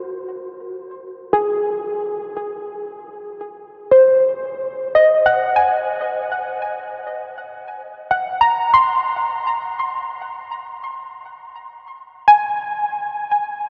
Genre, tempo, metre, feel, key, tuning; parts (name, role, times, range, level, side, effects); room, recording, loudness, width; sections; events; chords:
ambient; 58 BPM; 3/4; straight; Ab mixolydian; A4 = 440 Hz
soft round pluck; solo; 0.0-13.7 s; Ab4 to C6; -19 LUFS; equal; analog chorus, delay
wet huge ambient reverb, RT60 7.8 s; in a vast, echoing space; -18 LUFS; mono
0.0-13.7 A section
0.0 Ab7